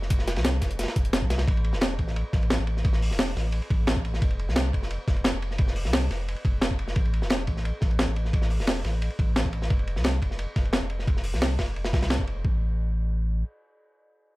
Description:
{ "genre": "liquid drum and bass", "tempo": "175 BPM", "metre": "4/4", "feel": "straight", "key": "unclear", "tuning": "A4 = 440 Hz", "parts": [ { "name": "warm sub bass", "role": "bass", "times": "0.0-13.4 s", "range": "E1 to C2", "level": "-27 LUFS", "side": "equal", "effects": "none" }, { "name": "crunchy breakbeat drum kit", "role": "drums", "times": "0.0-12.4 s", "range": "hi-hat, ride cymbal, snare drum", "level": "-33 LUFS", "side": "equal", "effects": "high-pass filter on cymbals, high-pass filter on hats, high-pass filter on snare, high-pass filter on room" }, { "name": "breakbeat sampler-style drum kit", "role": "drums", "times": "0.1-12.2 s", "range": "hi-hat, snare drum", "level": "-27 LUFS", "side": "equal", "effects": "none" }, { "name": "electronic kick drum", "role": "drums", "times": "0.1-12.5 s", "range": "none", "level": "-26 LUFS", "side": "equal", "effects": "none" } ], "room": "small room ambience", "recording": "none", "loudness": "-23 LUFS", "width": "side -20 dB against mid", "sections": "0.0-12.4 A section; 12.4-14.4 B section", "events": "none", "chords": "none" }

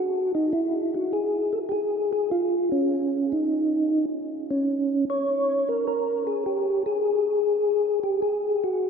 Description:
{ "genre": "jazz", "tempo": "102 BPM", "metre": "4/4", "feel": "swing 68% on 8ths", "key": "unclear", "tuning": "A4 = 440 Hz", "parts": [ { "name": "percussive tonewheel organ", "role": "solo", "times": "0.0-8.9 s", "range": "Db4 to Db5", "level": "-22 LUFS", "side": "equal", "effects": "slow rotary speaker, chorus vibrato" } ], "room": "wet cathedral reverb, RT60 6.0 s", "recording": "in a vast, echoing space", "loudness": "-22 LUFS", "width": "side -6 dB against mid", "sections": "0.0-8.9 A section", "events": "none", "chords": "none" }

